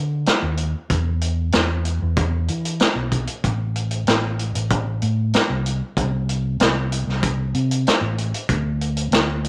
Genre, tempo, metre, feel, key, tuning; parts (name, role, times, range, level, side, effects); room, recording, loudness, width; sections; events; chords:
psychedelic rock; 95 BPM; 4/4; straight; A minor; A4 = 441 Hz
fingered electric bass; bass; 0.0-9.5 s; A1 to E3; -24 LUFS; equal
vintage drum kit; drums; 0.3-9.5 s; hi-hat, kick drum, snare drum; -23 LUFS; equal
light reverb; -21 LUFS; mono
0.0-9.5 A section